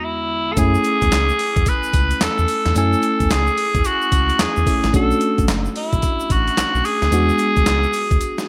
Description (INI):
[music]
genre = R&B, new jack swing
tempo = 110 BPM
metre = 4/4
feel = swing 63% on 16ths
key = F# minor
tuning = A4 = 440 Hz
[part]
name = breathy tenor saxophone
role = melody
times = 0.0-8.5 s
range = E4 to B4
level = -22 LUFS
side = equal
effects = delay
[part]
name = FM electric piano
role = accompaniment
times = 0.0-8.5 s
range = E2 to G#5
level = -25 LUFS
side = equal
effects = none
[part]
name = round analog bass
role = bass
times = 0.6-8.2 s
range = F#1 to F#2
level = -23 LUFS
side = equal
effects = none
[part]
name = boom bap sampler-style drum kit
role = drums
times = 0.6-8.5 s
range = handclaps, hi-hat, kick drum, snare drum, tambourine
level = -23 LUFS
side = equal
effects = gated reverb
[part]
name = tube shaker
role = percussion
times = 0.6-8.5 s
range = none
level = -41 LUFS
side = equal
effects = none
[sound]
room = moderate plate reverb, RT60 1.5 s, digital ambience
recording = bright 1980s-style digital production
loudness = -18 LUFS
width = mono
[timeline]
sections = 0.0-8.5 A section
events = none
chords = 0.0 E7; 0.6 F#m9 (rootless); 4.9 Bm7; 7.1 E7